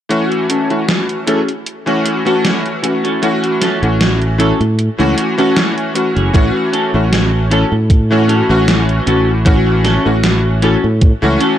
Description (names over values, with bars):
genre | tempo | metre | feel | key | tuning
vaporwave | 77 BPM | 4/4 | swing 54% on 16ths | A major | A4 = 440 Hz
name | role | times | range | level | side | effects
bright electric grand piano | accompaniment | 0.1-11.6 s | E3 to A4 | -15 LUFS | left 1 dB | ensemble chorus, tape echo
gated 80s digital drum machine | drums | 0.1-11.6 s | hi-hat, snare drum | -17 LUFS | right 1 dB | gated reverb, gated reverb snare
clean electric guitar | riff | 0.5-11.6 s | C#4 to A4 | -21 LUFS | left 1 dB | lush chorus, vintage 12-bit sampler grit, low-pass filter, tape echo
fingered electric bass | bass | 3.8-11.4 s | F#1 to A2 | -15 LUFS | equal | tube saturation
electronic kick drum | drums | 6.3-11.2 s | none | -10 LUFS | equal | none
room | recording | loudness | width
light reverb | dry, gritty hardware recording | -11 LUFS | side -10 dB against mid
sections
0.1-6.3 A section; 6.3-11.6 B section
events
filter sweep on clean electric guitar 0.1-6.3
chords
0.1 A6